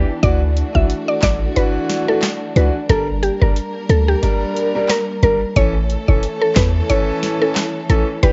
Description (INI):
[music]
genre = dancehall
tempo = 90 BPM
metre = 4/4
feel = swing 56% on 16ths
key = unclear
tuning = A4 = 440 Hz
[part]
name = bright concert grand piano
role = accompaniment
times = 0.0-8.3 s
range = E3 to Bb4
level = -24 LUFS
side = equal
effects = sidechain pumping, cassette tape
[part]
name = warm studio string section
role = sustained chords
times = 0.0-8.3 s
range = E3 to Bb4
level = -28 LUFS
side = equal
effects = sidechain pumping, cassette tape
[part]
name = clean 808-style bass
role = bass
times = 0.0-8.3 s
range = E1 to E2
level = -19 LUFS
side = equal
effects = none
[part]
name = mallet-like synth pluck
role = melody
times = 0.2-8.3 s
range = G4 to E5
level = -22 LUFS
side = equal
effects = chorus, cassette tape
[part]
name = booming analog drum machine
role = drums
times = 0.2-8.3 s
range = handclaps, hi-hat, kick drum, snare drum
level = -21 LUFS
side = equal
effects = cassette tape
[sound]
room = digital ambience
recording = home recording on cassette, nothing above 7.7 kHz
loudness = -17 LUFS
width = mono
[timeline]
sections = 0.0-8.3 A section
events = none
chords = 0.2 Dadd9; 2.9 Gm; 5.6 A